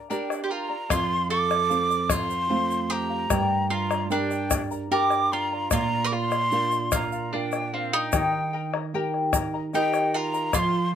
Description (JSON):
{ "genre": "andean folk, Andean ensemble", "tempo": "75 BPM", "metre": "3/4", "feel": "straight", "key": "unclear", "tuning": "A4 = 440 Hz", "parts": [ { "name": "mandolin", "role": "second line", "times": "0.0-10.9 s", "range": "C4 to Bb4", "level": "-31 LUFS", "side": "right 2 dB", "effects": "none" }, { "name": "charango", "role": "accompaniment", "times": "0.0-10.9 s", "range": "G4 to Bb5", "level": "-30 LUFS", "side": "left 5 dB", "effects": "none" }, { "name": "quena", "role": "melody", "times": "0.1-10.9 s", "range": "F5 to D6", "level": "-27 LUFS", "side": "right 1 dB", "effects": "none" }, { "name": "nylon-string guitar", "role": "accompaniment", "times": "0.1-10.9 s", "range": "F2 to Bb4", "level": "-29 LUFS", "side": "right 4 dB", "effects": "none" }, { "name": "egg shaker", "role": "percussion", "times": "0.1-10.7 s", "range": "none", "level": "-34 LUFS", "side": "right 8 dB", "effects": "none" }, { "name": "bombo", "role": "percussion", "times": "0.3-10.7 s", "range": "none", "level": "-28 LUFS", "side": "left 5 dB", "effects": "none" } ], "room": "light reverb", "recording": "none", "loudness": "-22 LUFS", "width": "side -9 dB against mid", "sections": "0.9-10.9 A section", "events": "none", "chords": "0.0 Gm; 0.9 F; 3.3 Gm; 5.7 Bb; 8.1 Eb" }